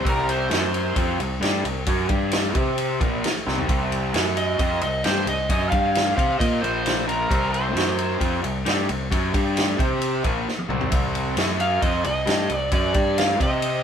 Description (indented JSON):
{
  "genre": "blues rock power trio and southern rock",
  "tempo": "133 BPM",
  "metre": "4/4",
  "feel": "straight",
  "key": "C minor",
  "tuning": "A4 = 440 Hz",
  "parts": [
    { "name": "overdriven slide guitar", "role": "melody", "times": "0.0-1.2, 4.4-8.4, 11.6-13.8 s", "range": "Bb4 to F5", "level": "-24 LUFS", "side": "equal", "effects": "none" },
    { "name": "raw garage guitar", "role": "riff", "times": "0.0-13.8 s", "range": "Bb2 to C5", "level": "-25 LUFS", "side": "equal", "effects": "overdrive" },
    { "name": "growling fingered electric bass", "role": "bass", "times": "0.0-13.8 s", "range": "Bb1 to C3", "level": "-28 LUFS", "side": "equal", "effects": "overdrive" },
    { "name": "vintage drum kit", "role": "drums", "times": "0.1-13.7 s", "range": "kick drum, ride cymbal, snare drum, toms", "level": "-24 LUFS", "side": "equal", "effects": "none" }
  ],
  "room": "moderate studio reverb, RT60 0.7 s",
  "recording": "band playing live in one room",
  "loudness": "-20 LUFS",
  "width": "side -8 dB against mid",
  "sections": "0.0-13.8 A section",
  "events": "drum fill 3.5, 10.5-10.9",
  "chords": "0.0 C5; 0.5 F#5; 1.0 C5; 2.1 G5; 2.6 C5; 4.1 F#5; 4.6 C5; 5.7 G5; 6.2 Cm; 6.6 Bb5; 7.3 C5; 7.8 F#5; 8.2 C5; 9.3 G5; 9.8 C5; 11.4 F#5; 11.8 Cm; 12.9 G5",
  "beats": "| 0.05 0.51 0.96 1.42 | 1.87 2.33 2.78 3.23 | 3.69 4.14 4.59 5.04 | 5.50 5.95 6.40 6.85 | 7.30 7.76 8.21 8.66 | 9.11 9.56 10.01 10.46 | 10.92 11.37 11.82 12.27 | 12.72 13.18 13.63"
}